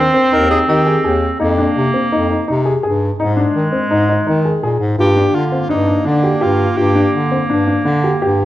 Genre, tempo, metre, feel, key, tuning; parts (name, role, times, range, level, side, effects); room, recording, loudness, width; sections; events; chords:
contemporary instrumental, chamber music in an uneven meter; 168 BPM; 5/4; straight; A4 = 441 Hz
bright alto saxophone; melody; 0.0-1.2, 5.0-7.1 s; D4 to C5; -18 LUFS; equal
bright clarinet; second line; 0.0-8.4 s; Ab3 to C4; -19 LUFS; right 1 dB
bright bass clarinet; bass; 0.0-8.4 s; Eb2 to Eb3; -17 LUFS; equal
warm baby grand piano; arpeggios; 0.1-8.4 s; C4 to Ab4; -17 LUFS; left 2 dB
moderate concert hall reverb, RT60 1.7 s; worn, warbling old tape, cassette tape, warbly pitch drift; -12 LUFS; side -14 dB against mid
0.0-5.0 A section; 5.0-8.4 B section
0.0 Abmaj7/Eb; 1.4 Fm7; 3.2 Ab5; 5.0 Gm7